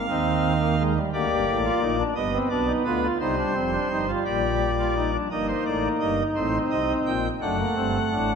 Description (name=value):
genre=classical, baroque-style 4-part fugue for pipe organ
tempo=57 BPM (dotted quarters)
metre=6/8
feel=straight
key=C minor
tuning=A4 = 441 Hz
part: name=pipe organ, cornet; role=solo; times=0.0-8.3 s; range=F1 to G5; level=-22 LUFS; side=equal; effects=none
room=wet concert hall reverb, RT60 2.2 s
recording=none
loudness=-22 LUFS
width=side -6 dB against mid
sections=0.0-5.3 A section; 5.3-8.4 B section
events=none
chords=0.1 Cm/Eb; 1.1 Gm; 2.2 G7; 3.2 Cm; 4.3 Gm/Bb; 5.3 Eb/G; 6.4 Am7b5; 7.4 D7/F#